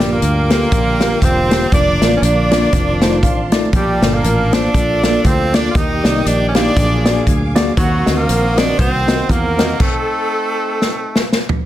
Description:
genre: uptempo gospel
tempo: 119 BPM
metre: 4/4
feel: swing 58% on 8ths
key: Bb major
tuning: A4 = 440 Hz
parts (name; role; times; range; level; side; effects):
- edgy tenor saxophone; melody; 0.0-11.3 s; Gb3 to F4; -20 LUFS; right 2 dB; none
- warm horn section; melody; 0.0-11.3 s; Bb3 to Eb5; -22 LUFS; left 1 dB; none
- tine electric piano; accompaniment; 0.0-9.7 s; G2 to A5; -19 LUFS; left 1 dB; medium stereo tremolo
- tonewheel organ; sustained chords; 0.0-9.8 s; D3 to Ab4; -25 LUFS; right 1 dB; none
- warm studio string section; sustained chords; 0.0-9.8 s; D5 to Eb6; -30 LUFS; right 1 dB; none
- fingered electric bass; bass; 0.0-9.7 s; E1 to E2; -19 LUFS; equal; none
- natural country drum kit; drums; 0.0-11.6 s; crash cymbal, hi-hat, kick drum, snare drum, toms; -16 LUFS; equal; none
room: light reverb, small room reverb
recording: dense, heavily limited modern master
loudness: -12 LUFS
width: side -13 dB against mid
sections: 0.0-11.7 A section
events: tine electric piano fill 2.7-3.7; stop 9.8-11.7; drum fill 10.8-11.7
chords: 0.0 Gm7; 1.7 Bb/F; 2.7 F7; 3.7 Bbmaj7; 5.8 Ebmaj7; 6.8 Bb7b13; 7.8 Ebm6; 9.8 Adim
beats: 0.21 0.72 1.22 | 1.72 2.23 2.73 3.23 | 3.74 4.24 4.75 5.25 | 5.75 6.26 6.76 7.27 | 7.78 8.28 8.79 9.29 | 9.80 10.31 10.81 11.32

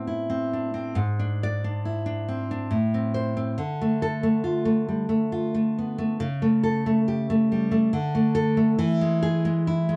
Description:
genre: romantic piece for solo classical guitar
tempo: 70 BPM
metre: 3/4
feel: rubato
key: A minor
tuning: A4 = 442 Hz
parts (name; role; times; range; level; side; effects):
- nylon-string guitar; solo; 0.0-10.0 s; G#2 to D5; -24 LUFS; equal; none
room: light reverb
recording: dark, warm production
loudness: -24 LUFS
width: mono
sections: 0.0-10.0 A section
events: none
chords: 0.0 Am; 1.0 E7/G#; 2.8 Am; 3.6 Dm; 6.2 A7/C#; 7.9 D5; 8.8 E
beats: 0.10 | 1.00 1.90 2.76 | 3.61 4.47 5.33 | 6.21 7.07 7.93 | 8.78 9.66

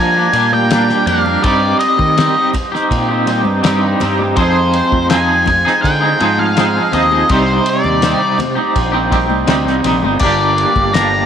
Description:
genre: psychedelic rock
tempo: 82 BPM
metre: 4/4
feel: straight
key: C minor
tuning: A4 = 440 Hz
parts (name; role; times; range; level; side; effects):
- octave-fuzz lead guitar; melody; 0.0-11.3 s; C5 to Bb5; -16 LUFS; left 1 dB; distortion, tape echo
- combo organ; sustained chords; 0.0-11.3 s; G3 to D5; -27 LUFS; right 12 dB; none
- twangy electric guitar; riff; 0.0-11.3 s; C3 to Ab4; -15 LUFS; right 1 dB; tremolo, double-tracked left and right
- fuzz fingered electric bass; bass; 0.0-11.3 s; G1 to F3; -19 LUFS; equal; overdrive
- cloth-damped thuddy drum kit; drums; 0.3-11.1 s; crash cymbal, kick drum, ride cymbal, snare drum; -21 LUFS; left 2 dB; none
- congas; percussion; 0.5-10.9 s; none; -27 LUFS; left 10 dB; none
room: light reverb, small room ambience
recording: 1960s-style stereo with parts hard left and right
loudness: -11 LUFS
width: side -8 dB against mid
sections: 0.0-11.3 A section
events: none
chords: 0.0 Gm; 1.4 Cm/G; 4.4 Fm7; 7.3 Cm; 10.2 Gm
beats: 0.71 | 1.44 2.18 2.91 3.64 | 4.37 5.11 5.84 6.57 | 7.30 8.03 8.76 9.49 | 10.22 10.95

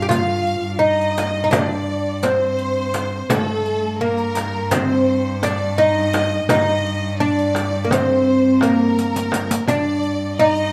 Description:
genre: Turkish makam ensemble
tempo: 169 BPM (eighths)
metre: 9/8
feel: straight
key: G makam ussak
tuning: A4 = 440 Hz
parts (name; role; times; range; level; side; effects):
- oud; melody; 0.0-10.7 s; A3-30c to G4; -21 LUFS; equal; none
- rich studio violin section; second line; 0.0-10.7 s; A4-30c to F5; -27 LUFS; equal; none
- warm cello; drone; 0.0-10.7 s; G2; -28 LUFS; equal; none
- frame drum; percussion; 0.1-9.8 s; none; -26 LUFS; equal; none
- riq; percussion; 0.1-10.7 s; none; -30 LUFS; equal; none
room: wet small room reverb, RT60 0.5 s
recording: none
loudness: -19 LUFS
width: mono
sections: 0.0-10.7 A section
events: drum fill 9.0-9.7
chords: none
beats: | 0.11 0.46 0.82 1.17 1.53 1.88 2.24 2.59 2.95 | 3.30 3.66 4.01 4.37 4.72 5.08 5.43 5.79 6.14 | 6.49 6.85 7.20 7.56 7.91 8.27 8.62 8.98 9.33 | 9.69 10.04 10.39

